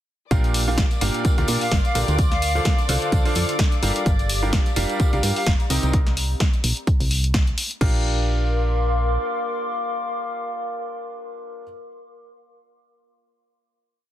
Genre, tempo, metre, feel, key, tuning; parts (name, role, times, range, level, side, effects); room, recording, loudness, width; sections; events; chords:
piano house; 128 BPM; 4/4; swing 56% on 16ths; Bb major; A4 = 442 Hz
dark studio violin section; sustained chords; 0.3-5.9 s; D5 to D6; -32 LUFS; left 5 dB; sidechain pumping
bright grand piano; riff; 0.3-11.6 s; Bb2 to F5; -27 LUFS; right 1 dB; sidechain pumping, dub echo
solid FM bass; bass; 0.3-9.2 s; F1 to Bb2; -23 LUFS; equal; sidechain pumping
electronic kick drum; drums; 0.3-7.9 s; -20 LUFS; equal
punchy analog drum machine; drums; 0.3-7.9 s; crash cymbal, hi-hat, snare drum; -27 LUFS; left 1 dB
tambourine; percussion; 0.3-5.9 s; -35 LUFS; equal
warbly tape-like pad; texture; 0.9-11.8 s; D4 to D6; -29 LUFS; left 1 dB; chorus, built-in reverb, sidechain pumping
reedy silver concert flute; melody; 1.6-5.5 s; F5; -29 LUFS; equal; dub echo
light reverb; dense, heavily limited modern master; -19 LUFS; side -12 dB against mid
0.3-7.8 drop; 7.8-11.6 final chord
drop 0.3-7.8
0.3 Bb6; 2.2 Dm7; 3.8 Gm7; 5.7 Cm7; 7.8 Bb6